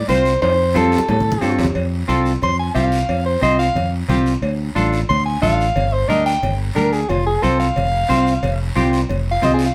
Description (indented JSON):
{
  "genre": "latin, cumbia",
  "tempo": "180 BPM",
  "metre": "4/4",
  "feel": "straight",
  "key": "F major",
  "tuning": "A4 = 440 Hz",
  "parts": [
    { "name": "mellow soprano saxophone", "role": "melody", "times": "0.0-9.7 s", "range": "F4 to C6", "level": "-21 LUFS", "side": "equal", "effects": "none" },
    { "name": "fingered electric bass", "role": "bass", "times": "0.0-9.7 s", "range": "F1 to A2", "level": "-23 LUFS", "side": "equal", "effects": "none" },
    { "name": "semi-hollow electric guitar", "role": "accompaniment", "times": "0.1-9.7 s", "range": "C4 to C5", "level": "-22 LUFS", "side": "equal", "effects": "none" },
    { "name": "congas", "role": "percussion", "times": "0.1-9.6 s", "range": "none", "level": "-28 LUFS", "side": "equal", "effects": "none" },
    { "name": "guiro", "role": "percussion", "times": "0.1-9.7 s", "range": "none", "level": "-36 LUFS", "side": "equal", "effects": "none" },
    { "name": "cowbell and timbales", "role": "percussion", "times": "0.4-9.6 s", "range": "none", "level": "-30 LUFS", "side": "equal", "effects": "none" }
  ],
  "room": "wet small room reverb, RT60 0.6 s",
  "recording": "band playing live in one room",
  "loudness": "-18 LUFS",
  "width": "mono",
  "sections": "0.0-1.8 A section; 1.8-9.7 B section",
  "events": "drum fill 0.4-1.8; soprano saxophone solo 1.8-9.7",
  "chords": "0.0 F; 1.8 F5; 4.4 Dm; 5.8 Gm; 7.1 F5",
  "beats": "0.09 | 0.42 0.76 1.09 1.42 | 1.75 2.09 2.42 2.76 | 3.09 3.42 3.76 4.09 | 4.43 4.76 5.09 5.43 | 5.76 6.10 6.43 6.76 | 7.10 7.43 7.76 8.10 | 8.43 8.77 9.10 9.44"
}